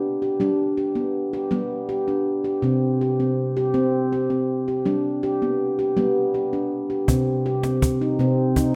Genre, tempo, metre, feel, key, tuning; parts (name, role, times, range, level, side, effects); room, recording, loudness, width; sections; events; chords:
world meditative, meditative tuned percussion; 54 BPM (dotted quarters); 6/8; straight; G major; A4 = 436 Hz
handpan; arpeggios; 0.0-8.8 s; C3 to G4; -23 LUFS; equal
cajon; percussion; 7.1-8.7 s; -25 LUFS; equal
wet echo chamber reverb, RT60 1.3 s, studio reverb; -23 LUFS; mono
0.0-7.1 A section; 7.1-8.8 B section
0.0 G; 2.6 C5; 4.9 G; 7.1 Cm